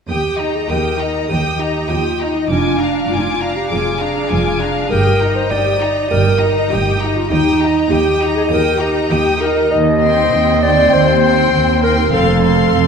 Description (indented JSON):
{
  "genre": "quick classical-period movement for symphony orchestra",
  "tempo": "100 BPM",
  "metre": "4/4",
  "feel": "straight",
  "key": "Eb major",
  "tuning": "A4 = 440 Hz",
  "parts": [
    { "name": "clear chamber violin section", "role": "melody", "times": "0.1-12.9 s", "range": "Bb5 to Eb6", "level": "-23 LUFS", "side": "left 1 dB", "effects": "none" },
    { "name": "dark clarinet", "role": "second line", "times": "0.1-12.9 s", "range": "D4 to Eb5", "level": "-16 LUFS", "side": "left 1 dB", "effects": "none" },
    { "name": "rich chamber violin section", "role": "second line", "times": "0.1-12.9 s", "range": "Eb5 to Ab5", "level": "-22 LUFS", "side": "left 3 dB", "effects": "none" },
    { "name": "warm chamber viola section", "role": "accompaniment", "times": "0.1-12.9 s", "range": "C4 to G4", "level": "-22 LUFS", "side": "equal", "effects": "none" },
    { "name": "warm chamber cello section", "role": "bass", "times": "0.1-12.9 s", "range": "Eb2 to G2", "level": "-21 LUFS", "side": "right 2 dB", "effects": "none" },
    { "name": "warm chamber double bass section", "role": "bass", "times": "0.1-12.9 s", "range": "F1 to Eb2", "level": "-20 LUFS", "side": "right 3 dB", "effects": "none" }
  ],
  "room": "wet scoring stage reverb, RT60 1.6 s",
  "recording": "minimal, uncompressed stereo recording",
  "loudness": "-13 LUFS",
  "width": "side -6 dB against mid",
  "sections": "0.1-12.9 A section",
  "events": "none",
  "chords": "0.1 Eb; 2.5 Bb7/F; 4.9 Eb/G; 7.3 Eb; 9.7 Cm/Eb; 12.1 F"
}